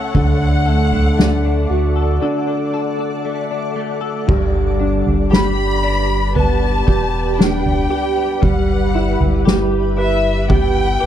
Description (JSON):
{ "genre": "pop ballad", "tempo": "58 BPM", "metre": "4/4", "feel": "straight", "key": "G major", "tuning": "A4 = 437 Hz", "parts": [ { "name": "warm studio violin section", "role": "melody", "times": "0.0-11.1 s", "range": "E5 to B5", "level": "-22 LUFS", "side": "left 3 dB", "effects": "none" }, { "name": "warm concert grand piano", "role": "accompaniment", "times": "0.0-11.1 s", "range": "C#3 to D5", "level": "-21 LUFS", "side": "right 3 dB", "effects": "none" }, { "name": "shimmering ambient pad", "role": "sustained chords", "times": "0.0-11.1 s", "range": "G4 to D6", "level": "-24 LUFS", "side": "equal", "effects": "chorus, built-in reverb" }, { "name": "direct-recorded clean electric guitar", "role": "arpeggios", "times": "0.0-11.1 s", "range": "G2 to A4", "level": "-25 LUFS", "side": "left 10 dB", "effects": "ensemble chorus" }, { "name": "soft-mallet drum kit", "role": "drums", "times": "0.1-10.7 s", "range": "crash cymbal, kick drum, snare drum, toms", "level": "-17 LUFS", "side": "equal", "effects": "none" }, { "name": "sub bass with octave", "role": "bass", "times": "0.2-11.1 s", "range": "E1 to D2", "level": "-19 LUFS", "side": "equal", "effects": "none" } ], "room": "little or no reverb", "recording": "none", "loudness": "-14 LUFS", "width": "side -10 dB against mid", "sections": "0.0-4.3 A section; 4.3-11.1 B section", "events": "break 2.2-4.3", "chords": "0.1 D; 4.3 G; 8.4 Em/G", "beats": "| 0.15 1.18 2.22 3.25 | 4.29 5.32 6.36 7.39 | 8.43 9.46 10.49" }